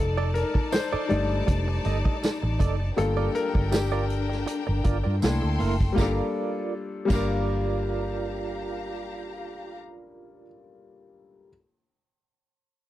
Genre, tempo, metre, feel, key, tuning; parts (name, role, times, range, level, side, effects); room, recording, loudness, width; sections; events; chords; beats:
lush 1970s-style soul; 80 BPM; 4/4; swing 54% on 16ths; G minor; A4 = 440 Hz
clear studio string section; second line; 0.0-9.7 s; D4 to C6; -34 LUFS; left 4 dB
clear grand piano; accompaniment; 0.0-11.5 s; G3 to D5; -29 LUFS; left 3 dB
vintage muted fingered electric bass; bass; 0.0-10.4 s; F1 to G2; -27 LUFS; equal
direct-recorded clean electric guitar; riff; 0.2-10.6 s; Bb3 to Eb5; -33 LUFS; right 9 dB; tremolo
vintage drum kit; drums; 0.4-7.3 s; crash cymbal, hi-hat, kick drum, snare drum; -26 LUFS; equal
tambourine; percussion; 0.7-7.3 s; -42 LUFS; right 8 dB
little or no reverb; dry, close 1970s-style studio recording; -23 LUFS; side -14 dB against mid
0.0-6.0 A section; 6.0-9.0 B section
grand piano solo 0.0-6.0
0.0 F13; 3.0 Gm7; 5.2 C13; 6.0 Gm7
0.73 1.48 2.23 | 2.98 3.73 4.48 5.23 | 5.98 6.73 7.48 8.23